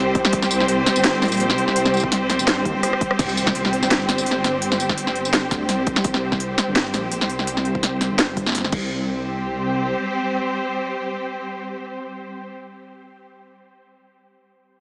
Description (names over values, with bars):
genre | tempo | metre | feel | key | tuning
half-time drum and bass | 168 BPM | 4/4 | swing 54% on 16ths, half-time | unclear | A4 = 440 Hz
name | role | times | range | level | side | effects
warm symphonic string section | sustained chords | 0.0-12.5 s | G3 to C5 | -22 LUFS | equal | sidechain pumping, low-pass filter
dark detuned saw bass | bass | 0.0-9.9 s | G1 to Eb2 | -26 LUFS | equal | none
drum and bass drum kit | drums | 0.1-8.8 s | crash cymbal, hi-hat, rim click, snare drum, tambourine | -21 LUFS | equal | none
electronic kick drum | drums | 0.2-8.8 s | none | -24 LUFS | equal | none
impact | sound effects | 3.2-4.6 s | none | -36 LUFS | equal | none
room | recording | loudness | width
moderate huge ambient reverb, RT60 6.4 s | small speaker sound | -18 LUFS | side -31 dB against mid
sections
0.0-3.2 A section; 3.2-8.9 B section; 8.9-11.8 C section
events
drop 0.0-3.2; drum fill 2.8-3.2; band accent 3.1; impact 3.2-4.6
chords
0.0 C5